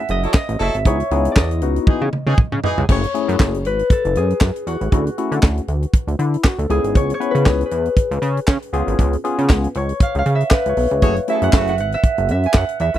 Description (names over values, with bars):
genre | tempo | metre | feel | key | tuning
early-eighties boogie funk | 118 BPM | 4/4 | swing 56% on 16ths | unclear | A4 = 440 Hz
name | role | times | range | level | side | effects
concert harp | melody | 0.0-13.0 s | F#4 to G#5 | -22 LUFS | left 1 dB | slapback echo
chorused synth bass | bass | 0.1-13.0 s | F#1 to D3 | -19 LUFS | equal | none
tight funk drum kit | drums | 0.1-13.0 s | crash cymbal, handclaps, hi-hat, kick drum, snare drum, toms | -15 LUFS | equal | none
warm horn section | second line | 0.2-2.8, 11.0-11.7 s | C#3 to C#5 | -24 LUFS | right 1 dB | none
barky tine electric piano | accompaniment | 0.9-11.7 s | A3 to B4 | -22 LUFS | left 4 dB | overdrive, phaser
room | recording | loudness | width
little or no reverb | dry, close 1970s-style studio recording | -15 LUFS | side -12 dB against mid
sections
0.0-2.9 A section; 2.9-13.0 B section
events
drum fill 1.9-2.9; harp solo 2.9-13.0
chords
0.0 F#m7; 0.9 C#m9; 2.9 F#m7; 4.9 Dmaj7; 6.7 C#m7; 8.7 C#7; 11.0 F#m7